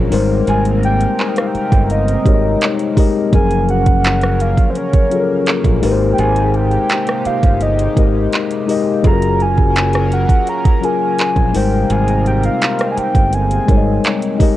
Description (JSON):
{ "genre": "contemporary R&B", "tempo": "84 BPM", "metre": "4/4", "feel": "straight", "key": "Ab major", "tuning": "A4 = 440 Hz", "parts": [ { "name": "mellow tine electric piano", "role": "accompaniment", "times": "0.0-14.6 s", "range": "F3 to Eb5", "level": "-17 LUFS", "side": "left 6 dB", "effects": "medium stereo tremolo, cassette tape" }, { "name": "chorused pulse-width pad", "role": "sustained chords", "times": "0.0-14.6 s", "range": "C3 to Bb4", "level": "-24 LUFS", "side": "right 2 dB", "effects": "sidechain pumping, cassette tape" }, { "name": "modern bright fingered electric bass", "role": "bass", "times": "0.0-14.0 s", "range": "Gb1 to Bb1", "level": "-17 LUFS", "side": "right 1 dB", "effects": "none" }, { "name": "smooth R&B drum kit", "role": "drums", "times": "0.1-14.6 s", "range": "handclaps, hi-hat, kick drum, rim click", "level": "-15 LUFS", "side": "right 1 dB", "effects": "cassette tape" }, { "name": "soft octave-layered synth lead", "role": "melody", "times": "0.5-14.4 s", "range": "C5 to Bb5", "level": "-20 LUFS", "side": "right 1 dB", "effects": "chorus, phaser, cassette tape, tape echo" } ], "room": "little or no reverb", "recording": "home recording on cassette", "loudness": "-12 LUFS", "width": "side -14 dB against mid", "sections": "0.0-14.6 A section", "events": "none", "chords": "0.1 Abmaj9; 3.3 Gbmaj7; 5.8 Abmaj9; 9.0 Gbmaj7; 11.5 Abmaj9" }